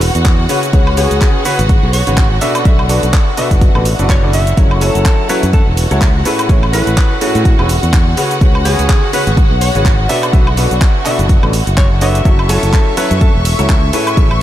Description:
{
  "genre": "piano house",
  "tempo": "125 BPM",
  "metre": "4/4",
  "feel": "swing 57% on 16ths",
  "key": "F# minor",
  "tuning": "A4 = 440 Hz",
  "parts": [
    { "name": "clear symphonic string section", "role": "sustained chords", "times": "0.0-14.4 s", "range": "F#4 to C#6", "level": "-21 LUFS", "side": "left 1 dB", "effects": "sidechain pumping" },
    { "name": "modern bright fingered electric bass", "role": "bass", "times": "0.0-14.4 s", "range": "E1 to A2", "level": "-14 LUFS", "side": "equal", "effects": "sidechain pumping" },
    { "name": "house drum kit", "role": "drums", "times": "0.0-14.4 s", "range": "handclaps, hi-hat, ride cymbal, shaker, woodblock", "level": "-21 LUFS", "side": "right 1 dB", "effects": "none" },
    { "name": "electronic kick drum", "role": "drums", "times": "0.3-14.3 s", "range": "none", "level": "-11 LUFS", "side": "equal", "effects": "overdrive" },
    { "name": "clear baby grand piano", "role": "riff", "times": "0.5-14.3 s", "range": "A2 to E5", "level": "-18 LUFS", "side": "equal", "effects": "wide subtle chorus, sidechain pumping, tape echo" },
    { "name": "breathy alto saxophone", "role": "melody", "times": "1.0-13.3 s", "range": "F#4 to E5", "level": "-22 LUFS", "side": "equal", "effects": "tape echo" }
  ],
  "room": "light reverb",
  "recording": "none",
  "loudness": "-9 LUFS",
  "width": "side -12 dB against mid",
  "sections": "0.0-14.4 A section",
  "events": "none",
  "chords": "0.5 C#7sus4; 2.4 Bm7; 4.6 F#m7; 6.3 Amaj9; 8.2 C#7sus4; 10.1 Bm7; 12.3 F#m7"
}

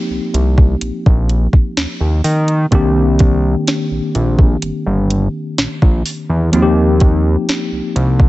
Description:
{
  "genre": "contemporary R&B",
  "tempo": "63 BPM",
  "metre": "4/4",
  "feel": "straight",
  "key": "C minor",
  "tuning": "A4 = 438 Hz",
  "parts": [
    { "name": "mellow tine electric piano", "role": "accompaniment", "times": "0.0-8.3 s", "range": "Eb3 to G4", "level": "-18 LUFS", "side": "left 1 dB", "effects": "medium stereo tremolo" },
    { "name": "fat analog bass", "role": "bass", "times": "0.1-8.3 s", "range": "G1 to Eb3", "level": "-14 LUFS", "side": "equal", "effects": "none" },
    { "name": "smooth R&B drum kit", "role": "drums", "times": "0.3-8.3 s", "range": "hi-hat, kick drum, snare drum", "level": "-13 LUFS", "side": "equal", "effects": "none" }
  ],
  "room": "little or no reverb",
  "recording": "nothing above 8.0 kHz",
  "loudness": "-12 LUFS",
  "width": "side -18 dB against mid",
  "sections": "0.0-8.3 A section",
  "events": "none",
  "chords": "0.0 Eb69; 2.7 Cm9; 6.5 Eb69"
}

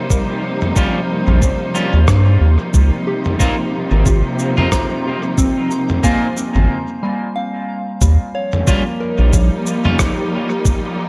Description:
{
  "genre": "ambient dub",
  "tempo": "91 BPM",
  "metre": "4/4",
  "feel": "swing 57% on 16ths",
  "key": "Eb mixolydian",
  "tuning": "A4 = 443 Hz",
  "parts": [
    { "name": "warm studio string section", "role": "sustained chords", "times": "0.0-11.1 s", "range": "C3 to Eb4", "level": "-23 LUFS", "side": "equal", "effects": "none" },
    { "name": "soft synth bell", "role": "arpeggios", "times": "0.0-11.1 s", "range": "G3 to Bb5", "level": "-26 LUFS", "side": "equal", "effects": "chorus, phaser, tape echo" },
    { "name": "drifting glass-harmonics texture", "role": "texture", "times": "0.0-6.7 s", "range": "C5", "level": "-33 LUFS", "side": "equal", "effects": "chorus, built-in reverb" },
    { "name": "electronic kick drum", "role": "drums", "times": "0.1-10.8 s", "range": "none", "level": "-20 LUFS", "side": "equal", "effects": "none" },
    { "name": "lo-fi sampler-style drum kit", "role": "drums", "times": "0.1-10.8 s", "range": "rim click, shaker, toms", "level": "-25 LUFS", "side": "equal", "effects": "dub echo" },
    { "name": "electric guitar at the edge of break-up", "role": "stabs", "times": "0.8-10.0 s", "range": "G3 to F4", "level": "-27 LUFS", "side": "equal", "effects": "subtle chorus, dub echo" },
    { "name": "round analog bass", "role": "bass", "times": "1.3-9.5 s", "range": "Ab1 to G2", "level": "-14 LUFS", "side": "equal", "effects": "none" }
  ],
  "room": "light reverb",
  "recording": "none",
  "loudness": "-16 LUFS",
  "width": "mono",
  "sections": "0.0-8.0 A section; 8.0-11.1 B section",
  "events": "break 6.7-8.0",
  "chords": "0.0 Eb9; 2.7 Dbmaj13 (rootless); 8.0 Eb9"
}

